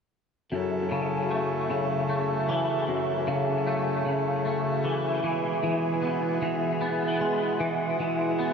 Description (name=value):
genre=rock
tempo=76 BPM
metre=3/4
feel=straight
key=F# minor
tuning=A4 = 442 Hz
part: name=pedal harmonium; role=sustained chords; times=0.5-8.5 s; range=B2 to A4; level=-30 LUFS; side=right 1 dB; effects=stereo widening
part: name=twangy electric guitar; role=arpeggios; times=0.5-8.5 s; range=F#2 to B3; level=-26 LUFS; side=left 1 dB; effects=ensemble chorus, ping-pong delay
room=wet cathedral reverb, RT60 6.0 s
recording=dreamy mix soaked in reverb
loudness=-25 LUFS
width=side -6 dB against mid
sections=0.5-8.5 A section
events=none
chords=0.5 F#m7; 5.2 E